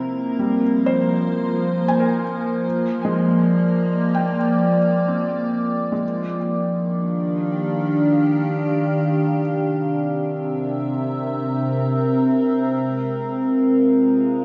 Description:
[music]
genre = ambient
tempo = free time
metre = none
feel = none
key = unclear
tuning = A4 = 440 Hz
[part]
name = evolving wavetable pad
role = sustained chords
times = 0.0-14.4 s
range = C3 to F5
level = -21 LUFS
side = equal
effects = chorus, built-in reverb
[part]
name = felt-muted upright piano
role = arpeggios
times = 0.0-9.4 s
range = G3 to Ab5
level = -31 LUFS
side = equal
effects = tape echo
[sound]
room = wet concert hall reverb, RT60 2.0 s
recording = dark, warm production, nothing above 7.6 kHz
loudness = -20 LUFS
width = mono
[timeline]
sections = 0.0-14.4 A section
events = fade-out on felt piano 0.0-14.4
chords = 0.0 Ab69; 2.6 Bb7; 6.0 Ebmaj9; 9.4 C7; 12.7 Ab69

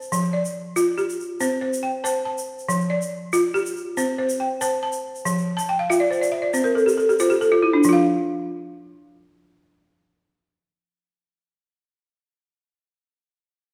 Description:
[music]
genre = west african traditional, West African string and xylophone music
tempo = 93 BPM (dotted quarters)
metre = 12/8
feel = straight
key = F major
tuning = A4 = 441 Hz
[part]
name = balafon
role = arpeggios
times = 0.0-12.0 s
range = F3 to A5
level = -22 LUFS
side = equal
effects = none
[part]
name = tube shaker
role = percussion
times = 0.0-8.0 s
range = none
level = -36 LUFS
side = equal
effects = none
[sound]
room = wet recital hall reverb, RT60 1.7 s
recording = recorded in a church or concert hall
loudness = -22 LUFS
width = mono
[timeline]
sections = 0.0-7.8 A section; 7.8-10.4 B section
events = balafon fill 5.6-7.8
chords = 0.1 F; 1.4 C5; 2.7 F; 4.0 C5; 5.3 F; 6.5 N.C.

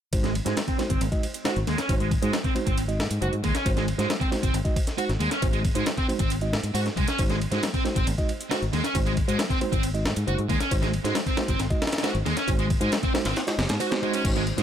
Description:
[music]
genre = breakbeat, breaks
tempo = 136 BPM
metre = 4/4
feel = straight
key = unclear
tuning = A4 = 440 Hz
[part]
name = mellow tine electric piano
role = stabs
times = 0.1-14.6 s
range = G#3 to D#5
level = -30 LUFS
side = right 3 dB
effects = medium stereo tremolo, low-pass filter, tape echo
[part]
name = fingered electric bass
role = bass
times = 0.1-14.6 s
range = F#1 to G#2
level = -27 LUFS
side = equal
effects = low-pass filter
[part]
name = breakbeat sampler-style drum kit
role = drums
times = 0.1-14.6 s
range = crash cymbal, kick drum, ride cymbal, snare drum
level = -27 LUFS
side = equal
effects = none
[part]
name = electronic hi-hat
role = drums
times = 0.1-14.6 s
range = none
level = -38 LUFS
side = right 2 dB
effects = overdrive
[part]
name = thick fuzz guitar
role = riff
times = 0.2-14.6 s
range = G#3 to F#4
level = -29 LUFS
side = equal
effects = distortion, tube saturation, low-pass filter, tape echo
[sound]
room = little or no reverb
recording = none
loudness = -23 LUFS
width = side -9 dB against mid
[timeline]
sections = 0.1-14.2 A section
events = none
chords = 0.1 G#7

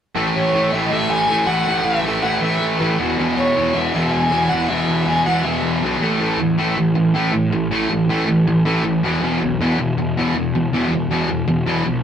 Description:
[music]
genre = punk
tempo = 159 BPM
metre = 4/4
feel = straight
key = unclear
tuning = A4 = 439 Hz
[part]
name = cranked stack guitar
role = riff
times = 0.2-12.0 s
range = E2 to A3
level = -18 LUFS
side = equal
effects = overdrive
[part]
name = fuzz picked electric bass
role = bass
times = 0.2-12.0 s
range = E1 to A2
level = -24 LUFS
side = equal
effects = overdrive
[part]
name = dark fiddle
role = melody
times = 0.4-5.8 s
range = B4 to G#5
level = -21 LUFS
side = equal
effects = none
[sound]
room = moderate studio reverb, RT60 0.6 s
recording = rough rehearsal-room recording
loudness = -16 LUFS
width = side -8 dB against mid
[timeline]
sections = 0.2-6.2 A section; 6.2-12.0 B section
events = none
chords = 0.2 A5; 3.0 E5; 6.0 A5; 9.0 E5

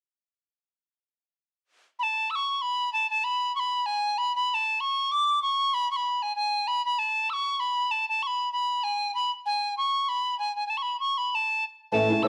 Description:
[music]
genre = celtic folk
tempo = 193 BPM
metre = 4/4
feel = swing 56% on 8ths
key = unclear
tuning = A4 = 439 Hz
[part]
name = bright reedy tin whistle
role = melody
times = 2.0-12.3 s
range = G#5 to E6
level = -27 LUFS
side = equal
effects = none
[part]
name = fingerpicked twelve-string acoustic guitar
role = accompaniment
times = 11.9-12.3 s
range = A2 to E4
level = -24 LUFS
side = equal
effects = none
[sound]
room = moderate studio reverb, RT60 0.7 s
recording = worn, warbling old tape, cassette tape, warbly pitch drift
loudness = -27 LUFS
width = mono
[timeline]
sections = 2.0-11.9 A section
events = none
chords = none

